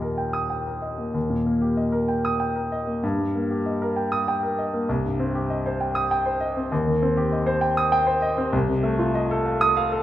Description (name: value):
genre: classical, virtuoso piano study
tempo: 97 BPM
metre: 3/4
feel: rubato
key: Eb major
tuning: A4 = 441 Hz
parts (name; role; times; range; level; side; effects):
- warm grand piano; solo; 0.0-10.0 s; C2 to Eb6; -21 LUFS; equal; none
room: wet recital hall reverb, RT60 1.7 s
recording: none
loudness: -21 LUFS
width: side -12 dB against mid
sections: 0.0-1.2 A section; 1.2-10.0 B section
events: none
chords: 0.0 Eb; 3.0 Eb/G; 4.9 Cm; 6.7 Cm/Eb; 8.5 F7/C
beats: 0.51 | 1.16 1.78 2.41 | 3.03 3.65 4.26 | 4.88 5.49 6.10 | 6.71 7.32 7.93 | 8.54 9.15 9.77